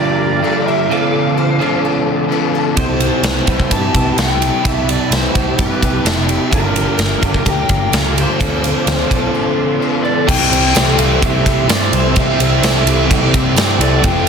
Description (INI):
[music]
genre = rock, shoegaze and dream pop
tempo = 128 BPM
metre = 4/4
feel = straight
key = C major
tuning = A4 = 438 Hz
[part]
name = lead guitar through a small cranked amp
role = melody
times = 0.0-14.3 s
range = Bb4 to A5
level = -21 LUFS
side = left 1 dB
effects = overdrive, slapback echo
[part]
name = lush unison pad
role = sustained chords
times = 0.0-14.3 s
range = F4 to E6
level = -26 LUFS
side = equal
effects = chorus
[part]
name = picked plugged-in twelve-string acoustic guitar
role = arpeggios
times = 0.0-14.3 s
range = G4 to C5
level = -25 LUFS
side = left 8 dB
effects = ensemble chorus, slapback echo
[part]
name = electric guitar at the edge of break-up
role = riff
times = 0.0-14.3 s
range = F2 to Bb4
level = -20 LUFS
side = right 11 dB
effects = reverse reverb
[part]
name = overdriven semi-hollow guitar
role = riff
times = 0.0-14.3 s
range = G2 to F4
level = -21 LUFS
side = left 11 dB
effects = wide subtle chorus
[part]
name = vintage muted picked electric bass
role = bass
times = 2.8-14.3 s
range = F1 to G2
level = -19 LUFS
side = equal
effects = none
[part]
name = big rock drum kit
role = drums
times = 2.8-14.1 s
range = crash cymbal, kick drum, ride cymbal, snare drum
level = -16 LUFS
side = right 1 dB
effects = none
[part]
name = cranked stack guitar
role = riff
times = 10.3-14.3 s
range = F2 to C4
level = -21 LUFS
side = equal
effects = overdrive
[part]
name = tambourine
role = percussion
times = 10.7-13.7 s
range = none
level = -28 LUFS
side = right 12 dB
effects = none
[sound]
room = small room ambience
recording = dense, heavily limited modern master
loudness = -12 LUFS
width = side -6 dB against mid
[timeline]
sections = 0.0-10.3 A section; 10.3-14.3 B section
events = none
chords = 0.0 Gm7; 0.9 Dm7; 2.8 Cmaj7; 6.5 Gm7; 8.4 Dm7; 10.3 C